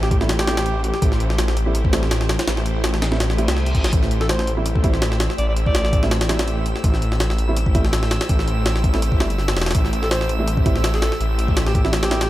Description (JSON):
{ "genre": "drum and bass, jungle", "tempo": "165 BPM", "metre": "4/4", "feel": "swing 54% on 16ths", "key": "A minor", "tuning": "A4 = 439 Hz", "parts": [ { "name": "warm alto saxophone", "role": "melody", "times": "0.0-1.1, 4.2-6.0, 10.0-12.3 s", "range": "G4 to D5", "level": "-28 LUFS", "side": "equal", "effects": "dub echo" }, { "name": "soft string machine", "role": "sustained chords", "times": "0.0-12.3 s", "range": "A3 to C5", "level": "-29 LUFS", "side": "equal", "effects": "ensemble chorus, vintage 12-bit sampler grit" }, { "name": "detuned saw bass", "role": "bass", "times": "0.0-12.3 s", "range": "E1 to C2", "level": "-21 LUFS", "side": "equal", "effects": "none" }, { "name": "jungle sampler-style drum kit", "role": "drums", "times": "0.0-12.3 s", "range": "hi-hat, kick drum, snare drum", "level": "-21 LUFS", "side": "equal", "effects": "none" }, { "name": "dark baby grand piano", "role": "stabs", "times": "0.2-12.2 s", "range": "G3 to E4", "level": "-29 LUFS", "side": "right 2 dB", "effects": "dub echo" }, { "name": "reverse cymbal", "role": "sound effects", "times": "3.4-3.9 s", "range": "none", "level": "-33 LUFS", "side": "left 1 dB", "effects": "none" }, { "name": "drifting glass-harmonics texture", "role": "texture", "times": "4.6-12.3 s", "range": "E6", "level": "-33 LUFS", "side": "right 2 dB", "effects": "chorus, built-in reverb" } ], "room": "digital ambience", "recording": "none", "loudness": "-17 LUFS", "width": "side -15 dB against mid", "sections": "0.0-12.3 A section", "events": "reverse cymbal 3.4-3.9", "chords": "0.0 Am7" }